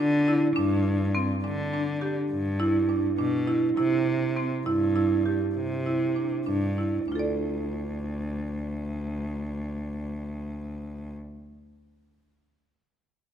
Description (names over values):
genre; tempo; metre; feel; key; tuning
contemporary instrumental, chamber music in an uneven meter; 202 BPM (eighths); 11/8; straight; D dorian; A4 = 440 Hz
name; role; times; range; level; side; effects
marimba with hard mallets; arpeggios; 0.0-11.5 s; C4 to D5; -26 LUFS; right 2 dB; none
clear cello; bass; 0.0-11.1 s; D2 to D3; -28 LUFS; left 1 dB; none
room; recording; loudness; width
moderate concert hall reverb, RT60 1.8 s; none; -25 LUFS; side -9 dB against mid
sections
0.0-7.1 A section; 7.1-10.4 B section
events
slowing down 2.3-7.1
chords
0.0 N.C.; 0.6 G5; 3.8 Cadd9; 7.1 Dm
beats
0.26 | 0.55 0.84 1.13 1.43 1.72 2.01 2.30 2.60 2.89 3.18 3.48 | 3.77 4.07 4.37 4.66 4.96 5.26 5.56 5.86 6.16 6.47 6.78 | 7.08 7.39 7.69 7.99 8.29 8.59 8.88 9.18 9.48 9.78 10.08